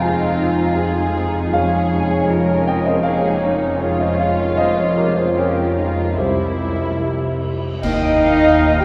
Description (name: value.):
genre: cinematic, emotional film score for orchestra.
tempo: 72-81 BPM.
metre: 4/4.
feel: rubato.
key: unclear.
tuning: A4 = 439 Hz.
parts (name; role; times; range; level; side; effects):
muted studio violin section; melody; 0.0-8.8 s; Db4 to G5; -26 LUFS; equal; none.
mellow clarinet; second line; 0.0-8.8 s; G4 to F5; -30 LUFS; equal; none.
muted studio violin section; second line; 0.0-8.8 s; Eb4 to G5; -28 LUFS; equal; none.
dark baby grand piano; accompaniment; 0.0-8.8 s; C2 to C6; -23 LUFS; equal; none.
muted studio viola section; accompaniment; 0.0-7.6 s; F3 to F4; -29 LUFS; equal; none.
clear French horn section; sustained chords; 0.0-8.8 s; G3 to G4; -25 LUFS; equal; none.
muted studio cello section; bass; 0.0-8.8 s; C2 to F2; -28 LUFS; equal; none.
muted studio double bass section; bass; 0.0-8.8 s; F1 to Eb2; -28 LUFS; equal; none.
cymbal swell, clash cymbals and concert bass drum; percussion; 4.6-8.8 s; none; -32 LUFS; equal; none.
clear oboe; second line; 7.8-8.8 s; F5; -28 LUFS; equal; none.
mellow hollow small flute group; second line; 7.8-8.8 s; G5; -28 LUFS; equal; none.
room: wet cathedral reverb, RT60 6.0 s.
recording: heard from further back in the room.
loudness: -18 LUFS.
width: mono.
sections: 0.0-7.8 A section; 7.8-8.8 B section.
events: band accent 7.8-8.6.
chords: 0.0 Fm7; 1.5 Dbadd9/F; 6.2 C; 7.8 Ebadd9.